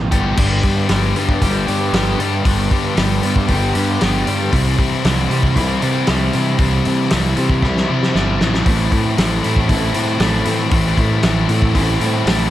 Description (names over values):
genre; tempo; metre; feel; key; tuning
indie rock; 116 BPM; 4/4; straight; unclear; A4 = 439 Hz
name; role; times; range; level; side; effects
crunchy overdriven guitar; riff; 0.0-12.5 s; E2 to G4; -20 LUFS; right 4 dB; wide subtle chorus, tape echo
fuzz fingered electric bass; bass; 0.0-12.5 s; G1 to C3; -19 LUFS; equal; overdrive
biting overdriven guitar; riff; 0.1-12.5 s; G2 to G4; -20 LUFS; left 8 dB; none
loose indie drum kit; drums; 0.1-12.4 s; crash cymbal, hi-hat, kick drum, snare drum; -19 LUFS; equal; none
room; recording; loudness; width
light reverb; none; -14 LUFS; side -13 dB against mid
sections
0.4-12.5 A section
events
drum fill 7.6-8.7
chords
0.4 G; 4.5 C; 8.7 Am